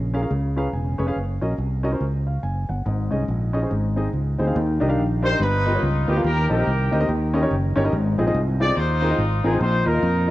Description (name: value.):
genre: uptempo gospel.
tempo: 142 BPM.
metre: 4/4.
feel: swing 61% on 8ths.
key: Eb major from 4.6 s.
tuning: A4 = 440 Hz.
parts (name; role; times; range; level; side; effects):
warm baby grand piano; accompaniment; 0.0-10.3 s; G2 to Bb5; -24 LUFS; left 1 dB; cassette tape.
fingered electric bass; bass; 0.0-10.3 s; Fb1 to F2; -22 LUFS; equal; none.
warm horn section; melody; 5.2-10.3 s; D#4 to D5; -24 LUFS; equal; cassette tape.
room: light reverb, studio reverb.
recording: home recording on cassette.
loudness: -19 LUFS.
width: side -16 dB against mid.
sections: 0.0-4.6 A section; 4.6-10.3 B section.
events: grand piano fill 0.3-1.2.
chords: 0.3 Db7; 1.2 Gb; 2.9 Absus4; 3.7 Ab; 4.6 Ebmaj7; 5.4 G7alt; 6.2 Cm7; 7.1 Eb7; 7.9 Ab6; 9.6 Bbsus4.